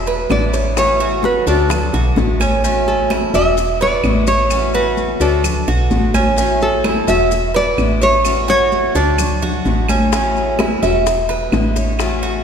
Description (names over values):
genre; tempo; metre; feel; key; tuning
latin, Cuban son and guajira; 128 BPM; 4/4; straight; A major; A4 = 436 Hz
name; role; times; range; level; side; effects
nylon-string guitar; melody; 0.0-9.9 s; A4 to E5; -18 LUFS; right 1 dB; none
Cuban tres; arpeggios; 0.0-12.4 s; C#4 to E5; -20 LUFS; right 5 dB; none
woody FM bass; bass; 0.0-12.4 s; E1 to D2; -19 LUFS; equal; none
bongos; percussion; 0.1-2.6, 10.1-12.2 s; none; -26 LUFS; left 5 dB; none
congas; percussion; 0.1-12.4 s; none; -24 LUFS; left 1 dB; none
maracas; percussion; 0.1-12.4 s; none; -32 LUFS; left 7 dB; none
picked acoustic archtop guitar; accompaniment; 0.3-12.4 s; D3 to F#4; -22 LUFS; left 6 dB; none
claves; percussion; 0.3-12.2 s; none; -31 LUFS; right 4 dB; none
room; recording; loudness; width
wet church reverb, RT60 3.5 s; recorded in a church or concert hall; -13 LUFS; side -7 dB against mid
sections
0.0-2.6 A section; 2.6-12.4 A section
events
none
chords
0.0 E7; 0.8 A6; 1.7 D6; 2.6 A6; 3.6 E7; 4.5 A6; 5.4 D6; 6.4 A6; 7.3 E7; 8.3 A6; 9.2 D6; 10.1 A6; 11.1 E7